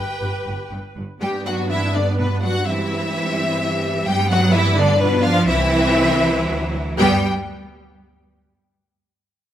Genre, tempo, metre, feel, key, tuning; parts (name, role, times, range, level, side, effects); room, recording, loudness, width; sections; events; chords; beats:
quick classical-period movement for string orchestra; 114-130 BPM; 3/4; rubato; G major; A4 = 441 Hz
rich studio violin section; melody; 0.0-7.3 s; B4 to G5; -23 LUFS; left 3 dB
rich studio violin section; second line; 0.0-7.3 s; B3 to G4; -24 LUFS; left 1 dB
rich studio viola section; accompaniment; 0.0-7.3 s; E3 to B4; -25 LUFS; right 1 dB
clear studio cello section; bass; 0.0-7.3 s; G2 to G3; -23 LUFS; right 2 dB
rich symphonic double bass section; bass; 0.0-7.3 s; G1 to G2; -24 LUFS; right 2 dB
light reverb; close, detailed microphones; -16 LUFS; side -11 dB against mid
0.0-1.2 A section; 1.2-7.0 B section; 7.0-8.5 C section
0.0 G; 2.7 C/G; 4.1 G; 5.0 G7; 5.5 C; 6.5 D7; 7.0 G
0.22 0.72 | 1.22 1.71 2.19 | 2.67 3.14 3.61 | 4.08 4.54 5.01 | 5.48 5.98 6.47 | 6.99